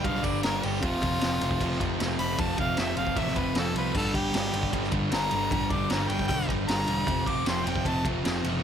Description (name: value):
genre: garage rock duo or trio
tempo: 154 BPM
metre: 4/4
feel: straight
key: unclear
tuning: A4 = 440 Hz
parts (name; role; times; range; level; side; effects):
- clear harmonica; melody; 0.0-8.1 s; F4 to D6; -31 LUFS; equal; overdrive
- fuzz guitar; riff; 0.0-8.6 s; F2 to G3; -28 LUFS; equal; distortion
- growling picked electric bass; bass; 0.0-8.6 s; E1 to C2; -34 LUFS; equal; overdrive
- raw garage drum kit; drums; 0.0-8.5 s; crash cymbal, kick drum, ride cymbal, snare drum; -31 LUFS; equal; none
room: little or no reverb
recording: none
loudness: -24 LUFS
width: side -8 dB against mid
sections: 0.0-8.6 A section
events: harmonica solo 0.0-8.6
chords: 0.0 G; 0.8 F5; 3.9 G5; 7.1 F5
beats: 0.04 0.43 | 0.82 1.21 1.60 1.99 | 2.38 2.77 3.16 3.55 | 3.94 4.34 4.73 5.12 | 5.51 5.90 6.29 6.68 | 7.07 7.46 7.86 8.25